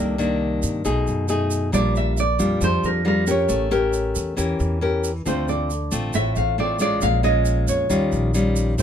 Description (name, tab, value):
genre	bossa nova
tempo	136 BPM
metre	4/4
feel	straight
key	unclear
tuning	A4 = 440 Hz
part	nylon-string guitar	melody	0.0-8.8 s	Bb4 to F5	-23 LUFS	right 2 dB	none
part	nylon-string guitar	accompaniment	0.0-8.8 s	A2 to Bb4	-22 LUFS	left 2 dB	none
part	upright bass	bass	0.0-8.8 s	A1 to G2	-24 LUFS	equal	none
part	tube shaker	percussion	0.2-8.8 s	none	-32 LUFS	right 7 dB	none
room	little or no reverb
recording	close, detailed microphones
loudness	-19 LUFS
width	side -8 dB against mid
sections	0.0-8.8 A section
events	none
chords	0.0 Cm9; 0.9 B6; 1.7 Bb6; 3.5 A7b9; 5.3 Dm7; 7.0 Bbm7; 7.9 Eb9